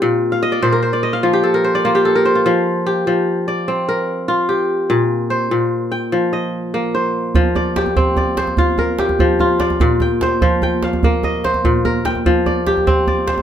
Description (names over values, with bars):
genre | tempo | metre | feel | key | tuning
west african traditional, West African string and xylophone music | 98 BPM (dotted quarters) | 12/8 | straight | F mixolydian | A4 = 441 Hz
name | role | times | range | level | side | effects
kora | arpeggios | 0.0-13.4 s | Bb2 to G5 | -15 LUFS | left 1 dB | none
djembe | percussion | 7.3-13.4 s | none | -18 LUFS | right 2 dB | none
room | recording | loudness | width
light reverb | close, detailed microphones | -14 LUFS | side -9 dB against mid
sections
0.0-7.4 A section; 7.4-13.4 B section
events
kora fill 0.3-2.5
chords
0.0 Bb5; 2.5 F5; 4.9 Bb5; 7.4 F5; 9.8 Bb; 12.3 F5